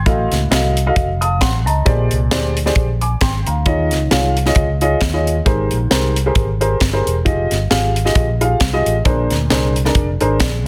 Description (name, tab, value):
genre	uptempo gospel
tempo	133 BPM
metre	4/4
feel	swing 57% on 8ths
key	unclear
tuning	A4 = 444 Hz
part	dark upright piano	accompaniment	0.0-10.7 s	Ab2 to Eb6	-20 LUFS	equal	none
part	fingered electric bass	bass	0.0-10.7 s	Fb1 to Eb2	-21 LUFS	equal	none
part	crisp fusion drum kit	drums	0.1-10.5 s	hi-hat, kick drum, snare drum	-20 LUFS	equal	none
room	light reverb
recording	dense, heavily limited modern master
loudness	-16 LUFS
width	mono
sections	0.0-10.7 A section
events	upright piano fill 1.0-1.9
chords	0.1 F7b9/A; 1.9 Bb13; 3.7 Eb9sus4; 5.5 Abmaj9; 7.3 Fm9; 9.1 Bb9